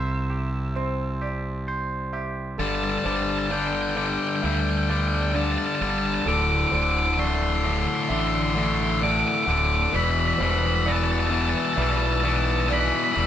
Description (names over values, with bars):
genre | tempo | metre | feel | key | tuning
rock | 65 BPM | 4/4 | straight | unclear | A4 = 440 Hz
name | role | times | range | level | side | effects
octave-fuzz lead guitar | melody | 0.0-13.3 s | E5 to D6 | -27 LUFS | right 2 dB | distortion
twangy electric guitar | arpeggios | 0.0-13.3 s | D2 to C5 | -32 LUFS | right 2 dB | none
fuzz fingered electric bass | bass | 0.0-13.3 s | D1 to D2 | -26 LUFS | right 1 dB | overdrive
felt-muted upright piano | arpeggios | 0.8-13.3 s | A4 to E5 | -36 LUFS | right 4 dB | none
tight distorted guitar | riff | 2.6-13.3 s | D2 to G3 | -25 LUFS | left 4 dB | distortion
room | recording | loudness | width
moderate studio reverb, RT60 0.6 s | band playing live in one room | -21 LUFS | side -10 dB against mid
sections
0.0-2.6 A section; 2.6-13.3 B section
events
build-up 2.6-13.3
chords
0.0 C; 2.6 Gsus2; 6.3 D5; 10.0 Em7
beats
0.76 1.68 | 2.59 3.51 4.43 5.35 | 6.27 7.19 8.11 9.03 | 9.95 10.87 11.79 12.71